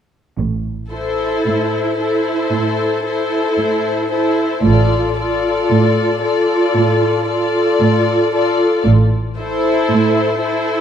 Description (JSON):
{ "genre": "classical, slow romantic movement for string orchestra", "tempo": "57 BPM", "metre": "4/4", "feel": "rubato", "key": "A minor", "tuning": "A4 = 437 Hz", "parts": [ { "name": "dark studio cello section", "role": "bass", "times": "0.4-10.8 s", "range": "A2", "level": "-19 LUFS", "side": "right 3 dB", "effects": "none" }, { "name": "warm studio double bass section", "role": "bass", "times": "0.4-9.8 s", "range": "A1", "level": "-18 LUFS", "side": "right 2 dB", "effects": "none" }, { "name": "warm symphonic violin section", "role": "melody", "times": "0.9-10.8 s", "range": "C5 to D5", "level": "-21 LUFS", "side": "left 7 dB", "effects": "none" }, { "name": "warm chamber violin section", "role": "second line", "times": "0.9-10.8 s", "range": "A4", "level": "-20 LUFS", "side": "left 2 dB", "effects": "none" }, { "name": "warm studio viola section", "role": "accompaniment", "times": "0.9-10.8 s", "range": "E4 to F4", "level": "-18 LUFS", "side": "right 1 dB", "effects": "none" } ], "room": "moderate scoring stage reverb, RT60 1.9 s", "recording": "dark, warm production", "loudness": "-14 LUFS", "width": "side -8 dB against mid", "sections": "0.4-10.8 A section", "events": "none", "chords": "0.4 Am; 4.6 Dm/A; 8.9 Am" }